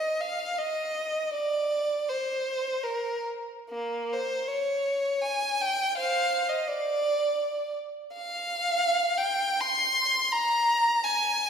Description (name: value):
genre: classical, free, expressive piece for unaccompanied violin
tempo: 62-90 BPM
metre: 3/4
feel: rubato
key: unclear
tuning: A4 = 441 Hz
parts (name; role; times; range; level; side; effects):
- rich violin; solo; 0.0-11.5 s; Bb3 to C6; -25 LUFS; equal; none
room: wet scoring stage reverb, RT60 1.9 s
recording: recorded in a church or concert hall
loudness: -25 LUFS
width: side -7 dB against mid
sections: 0.0-11.5 A section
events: none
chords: none